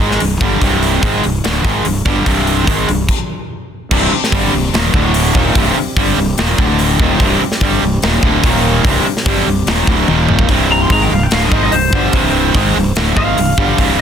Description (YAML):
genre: hard rock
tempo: 146 BPM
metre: 4/4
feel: straight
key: C minor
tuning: A4 = 439 Hz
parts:
  - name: cranked stack guitar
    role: riff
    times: 0.0-14.0 s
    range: C2 to Ab3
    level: -18 LUFS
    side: left 13 dB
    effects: overdrive
  - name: distorted electric guitar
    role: riff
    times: 0.0-14.0 s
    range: C2 to Ab3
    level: -16 LUFS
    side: right 11 dB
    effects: overdrive
  - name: fuzz fingered electric bass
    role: bass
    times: 0.0-14.0 s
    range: C1 to Ab1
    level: -18 LUFS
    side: equal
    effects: overdrive
  - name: tight metal drum kit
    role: drums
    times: 0.1-13.9 s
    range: crash cymbal, hi-hat, kick drum, snare drum, toms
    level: -16 LUFS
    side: equal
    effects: none
  - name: percussive tonewheel organ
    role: sustained chords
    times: 3.9-10.5 s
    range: C4 to F5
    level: -28 LUFS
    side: right 1 dB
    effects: none
  - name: lightly driven lead guitar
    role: melody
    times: 10.7-14.0 s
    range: C5 to C6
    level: -17 LUFS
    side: equal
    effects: slapback echo
room: light reverb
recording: dense, heavily limited modern master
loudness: -11 LUFS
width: side -8 dB against mid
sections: 0.0-3.9 A section; 3.9-10.5 B section; 10.5-14.0 C section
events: stop 3.1-3.9; drum fill 10.1-10.5; lead electric guitar solo 10.5-14.0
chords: 0.0 Cm; 3.5 N.C.; 3.9 Cm; 4.9 D5; 5.4 Cm; 6.6 D5; 7.0 Cm; 8.4 Eb5; 8.9 Cm; 10.1 Eb5; 10.5 Cm